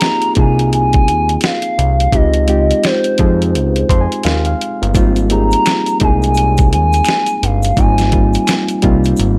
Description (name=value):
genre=R&B, neo-soul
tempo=85 BPM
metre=4/4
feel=swing 61% on 16ths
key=Ab major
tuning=A4 = 438 Hz
part: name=gliding portamento lead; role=melody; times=0.0-8.8 s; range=C5 to Bb5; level=-19 LUFS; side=equal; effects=chorus, plate reverb
part: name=bright reed electric piano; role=accompaniment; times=0.0-9.4 s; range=G3 to C6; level=-19 LUFS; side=equal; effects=none
part: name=boom bap sampler-style drum kit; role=drums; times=0.0-9.4 s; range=hi-hat, kick drum, snare drum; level=-18 LUFS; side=equal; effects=none
part: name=fat analog bass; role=bass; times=0.4-9.4 s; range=G1 to F2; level=-17 LUFS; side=equal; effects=none
part: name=egg shaker and finger snaps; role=percussion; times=4.9-9.4 s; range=none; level=-30 LUFS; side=equal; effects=none
room=light reverb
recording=none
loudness=-13 LUFS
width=mono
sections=0.0-9.4 A section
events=reed electric piano fill 3.5-4.9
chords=0.0 Ab6; 2.1 Dbmaj9; 4.9 Ab69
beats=0.01 0.71 1.42 | 2.12 2.83 3.53 4.24 | 4.95 5.65 6.36 7.06 | 7.77 8.47 9.18